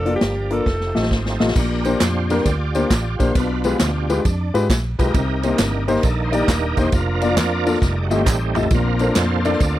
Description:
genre	uptempo gospel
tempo	134 BPM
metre	4/4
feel	swing 65% on 8ths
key	Bb major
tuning	A4 = 445 Hz
part	warm alto saxophone	melody	0.0-1.1 s	G4 to A4	-25 LUFS	right 1 dB	none
part	bright tonewheel organ	sustained chords	0.0-9.8 s	D3 to D5	-24 LUFS	right 3 dB	slow rotary speaker, overdrive, chorus vibrato
part	vintage muted fingered electric bass	bass	0.0-9.8 s	Eb1 to Ab2	-22 LUFS	right 1 dB	none
part	warm concert grand piano	accompaniment	0.1-9.6 s	Bb2 to Eb5	-21 LUFS	left 3 dB	none
part	swinging big-band drum kit	drums	0.1-9.7 s	crash cymbal, hi-hat, kick drum, ride cymbal, snare drum, toms	-21 LUFS	equal	none
part	tambourine and handclaps	percussion	1.6-9.7 s	none	-30 LUFS	right 3 dB	none
room	little or no reverb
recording	dry, close 1970s-style studio recording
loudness	-16 LUFS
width	side -14 dB against mid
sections	0.0-1.6 A section; 1.6-9.8 B section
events	drum fill 0.7-1.6, 7.8-8.7; tonewheel organ solo 1.6-9.8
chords	0.0 Bb/F; 0.7 F9; 1.6 Bb69; 3.4 G7b9/B; 5.1 Cm7; 6.9 Bb/F; 7.8 F9; 8.7 Bbmaj9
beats	0.22 0.67 1.11 | 1.56 2.01 2.46 2.90 | 3.35 3.80 4.25 4.69 | 5.14 5.58 6.03 6.48 | 6.92 7.37 7.82 8.26 | 8.71 9.16 9.60

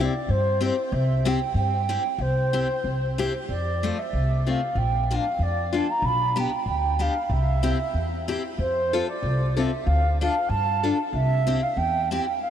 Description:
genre	alpine folk, alpine dance band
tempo	94 BPM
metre	2/4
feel	swing 55% on 8ths, rubato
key	C major, F major from 3.5 s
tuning	A4 = 440 Hz
part	baroque flute	melody	0.0-12.5 s	C5 to B5	-26 LUFS	right 2 dB	ping-pong delay
part	picked steel-string acoustic guitar	accompaniment	0.0-12.2 s	A3 to A4	-29 LUFS	left 5 dB	none
part	upright bass	bass	0.0-12.2 s	Bb1 to G2	-25 LUFS	equal	none
room	moderate huge ambient reverb, RT60 5.2 s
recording	dreamy mix soaked in reverb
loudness	-22 LUFS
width	side -9 dB against mid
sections	0.0-3.5 A section; 3.5-12.5 B section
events	none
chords	0.0 C; 3.5 F; 4.8 Bb; 6.0 G/B; 7.3 C; 8.6 F; 9.9 Dm; 11.1 C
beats	0.28 | 0.91 1.54 | 2.18 2.83 | 3.49 4.13 | 4.76 5.39 | 6.02 6.65 | 7.29 7.94 | 8.58 9.22 | 9.86 10.50 | 11.13 11.77 | 12.40

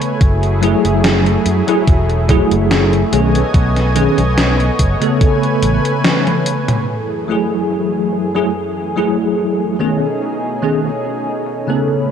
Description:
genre	vaporwave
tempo	72 BPM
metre	4/4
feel	swing 53% on 16ths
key	F# dorian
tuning	A4 = 440 Hz
part	bell-like tine electric piano	accompaniment	0.0-12.1 s	C#3 to A4	-16 LUFS	equal	fast stereo tremolo, analog chorus, vintage 12-bit sampler grit, analog delay
part	lush unison pad	sustained chords	0.0-12.1 s	F#2 to G#5	-20 LUFS	equal	chorus, vintage 12-bit sampler grit
part	gated 80s digital drum machine	drums	0.0-12.1 s	hi-hat, snare drum, toms	-18 LUFS	left 1 dB	gated reverb, gated reverb snare, overdrive, low-pass filter on hats, vintage 12-bit sampler grit, low-pass filter on snare, low-pass filter on toms, low-pass filter on room
part	fingered electric bass	bass	0.2-5.8 s	E1 to F#2	-16 LUFS	equal	none
part	electronic kick drum	drums	0.2-5.4 s	none	-12 LUFS	equal	overdrive, vintage 12-bit sampler grit
room	light reverb, digital ambience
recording	none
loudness	-13 LUFS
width	side -8 dB against mid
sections	0.0-6.9 A section; 6.9-12.1 B section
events	drum fill 6.0-6.9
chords	0.2 F#m9; 3.1 B13; 5.2 Amaj9; 6.9 F#m9; 9.8 B13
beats	| 0.21 1.04 1.88 2.71 | 3.54 4.38 5.21 6.04 | 6.88 7.71 8.54 9.38 | 10.21 11.04 11.88

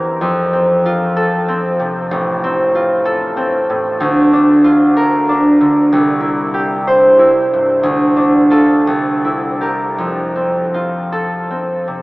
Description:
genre	classical, solo harp piece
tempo	53-65 BPM (dotted quarters)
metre	6/8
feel	rubato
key	F major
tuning	A4 = 440 Hz
part	concert harp	solo	0.0-12.0 s	A1 to C5	-12 LUFS	equal	none
room	wet huge ambient reverb, RT60 7.9 s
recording	in a vast, echoing space, small speaker sound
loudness	-12 LUFS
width	side -22 dB against mid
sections	0.0-12.0 A section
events	none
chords	0.2 F; 2.1 F/A; 4.0 Bb/D; 5.9 C; 7.9 Dm; 8.9 C7; 10.0 F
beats	| 0.22 1.17 | 2.12 3.07 | 4.02 4.98 | 5.93 6.88 | 7.86 8.87 | 9.97 11.10

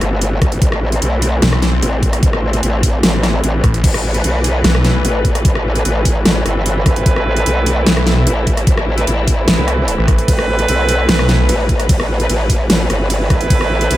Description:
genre	heavy wobble dubstep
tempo	149 BPM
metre	4/4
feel	half-time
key	A minor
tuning	A4 = 442 Hz
part	clear symphonic string section	sustained chords	0.0-14.0 s	E3 to B4	-22 LUFS	left 2 dB	sidechain pumping, low-pass filter
part	growl bass	bass	0.0-14.0 s	G1 to C2	-16 LUFS	equal	chorus, overdrive
part	dubstep drum kit	drums	0.0-14.0 s	crash cymbal, hi-hat, ride cymbal, rim click, snare drum	-18 LUFS	equal	overdrive
part	electronic kick drum	drums	0.4-13.6 s	none	-14 LUFS	equal	overdrive
part	snarling distorted saw bass	bass	1.4-5.0, 7.9-11.5 s	A1 to B1	-14 LUFS	equal	distortion, overdrive
part	mellow brass ensemble	stabs	5.2-14.0 s	C4 to B4	-21 LUFS	right 3 dB	dub echo
room	little or no reverb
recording	none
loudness	-12 LUFS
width	side -14 dB against mid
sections	0.0-14.0 A section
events	none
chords	0.0 Amadd9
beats	0.21 | 0.62 1.02 1.42 1.82 | 2.23 2.63 3.03 3.44 | 3.84 4.24 4.64 5.05 | 5.45 5.85 6.25 6.66 | 7.06 7.46 7.87 8.27 | 8.67 9.07 9.48 9.88 | 10.28 10.68 11.09 11.49 | 11.89 12.29 12.70 13.10 | 13.50 13.91

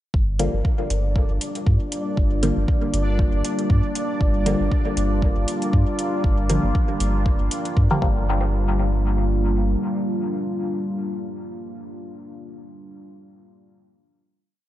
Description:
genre	dub techno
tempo	118 BPM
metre	4/4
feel	swing 56% on 16ths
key	G minor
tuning	A4 = 439 Hz
part	deep dark ambient pad	sustained chords	1.1-12.1 s	G3 to F4	-27 LUFS	equal	chorus, built-in reverb, sidechain pumping
part	warm sub bass	bass	0.1-9.8 s	G1 to G2	-22 LUFS	equal	sidechain pumping
part	electronic kick drum	drums	0.1-8.1 s	none	-20 LUFS	equal	small room reverb
part	bubbling stepped-filter texture	texture	0.8-8.3 s	D4 to D5	-32 LUFS	right 1 dB	chorus, built-in reverb, sidechain pumping
part	filtered dub chord stab	stabs	0.4-12.1 s	D3 to Bb3	-28 LUFS	equal	chorus, phaser, sidechain pumping, dub echo
part	electronic hi-hat	drums	0.4-7.7 s	none	-31 LUFS	equal	small room reverb
room	moderate cathedral reverb, RT60 5.7 s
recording	dreamy mix soaked in reverb, nothing above 10.3 kHz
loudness	-19 LUFS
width	side -14 dB against mid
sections	0.1-8.3 groove; 8.3-12.3 final hit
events	none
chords	0.1 Gm7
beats	| 0.14 0.65 1.16 1.67 | 2.17 2.68 3.19 3.70 | 4.21 4.72 5.22 5.73 | 6.24 6.75 7.26 7.77 | 8.28 8.79 9.29 9.80 | 10.31 10.82 11.33 11.84

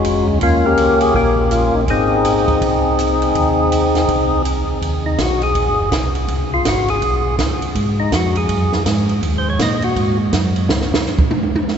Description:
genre	soul jazz organ trio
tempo	163 BPM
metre	4/4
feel	swing 63% on 8ths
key	Ab mixolydian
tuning	A4 = 438 Hz
part	percussive tonewheel organ	melody	0.0-10.2 s	Ab3 to Eb5	-17 LUFS	left 2 dB	slow rotary speaker, overdrive
part	mellow tonewheel organ	bass	0.0-10.9 s	F1 to Bb2	-19 LUFS	right 1 dB	slow rotary speaker
part	compact cocktail drum kit	drums	0.0-11.8 s	hi-hat, kick drum, ride cymbal, snare drum, toms	-21 LUFS	right 2 dB	none
room	wet cathedral reverb, RT60 6.0 s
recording	recorded in a church or concert hall, nothing above 7.9 kHz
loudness	-14 LUFS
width	side -7 dB against mid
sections	0.0-4.8 A section; 4.8-11.8 B section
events	tonewheel organ solo 4.8-11.8; drum solo 10.7-11.8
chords	0.4 Eb7; 1.9 Ab; 4.8 Ab9; 6.3 Db5; 7.8 Fm; 9.2 Eb5; 10.0 Gbsus2; 10.7 N.C.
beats	0.05 | 0.42 0.78 1.15 1.52 | 1.88 2.25 2.62 2.98 | 3.35 3.72 4.09 4.45 | 4.82 5.19 5.55 5.92 | 6.29 6.66 7.02 7.39 | 7.76 8.12 8.49 8.86 | 9.23 9.60 9.96 10.33 | 10.70 11.07 11.44

